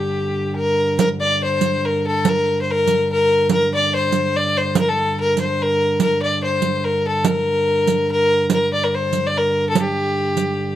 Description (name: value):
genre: medieval dance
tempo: 144 BPM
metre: 3/4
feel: straight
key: G minor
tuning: A4 = 440 Hz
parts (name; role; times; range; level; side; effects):
- clear fiddle; melody; 0.0-10.8 s; G4 to D5; -18 LUFS; left 2 dB; none
- pipe organ, principal; drone; 0.0-10.8 s; G2 to D3; -24 LUFS; right 1 dB; none
- riq; percussion; 1.0-10.6 s; none; -20 LUFS; right 7 dB; none
room: small room reverb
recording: dry, close 1970s-style studio recording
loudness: -16 LUFS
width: side -12 dB against mid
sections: 1.0-10.8 A section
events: none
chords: none